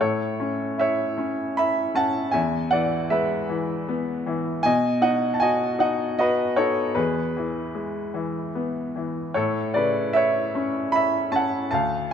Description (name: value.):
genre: classical, lyrical solo piano.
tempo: 77 BPM.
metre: 3/4.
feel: rubato.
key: A major.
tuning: A4 = 439 Hz.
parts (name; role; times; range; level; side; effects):
bright upright piano; solo; 0.0-12.1 s; D2 to B5; -21 LUFS; equal; none.
room: moderate concert hall reverb, RT60 1.8 s.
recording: none.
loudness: -21 LUFS.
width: side -8 dB against mid.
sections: 0.0-12.1 A section.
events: none.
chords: 0.0 A; 2.4 E; 4.7 B; 7.0 E; 9.3 A.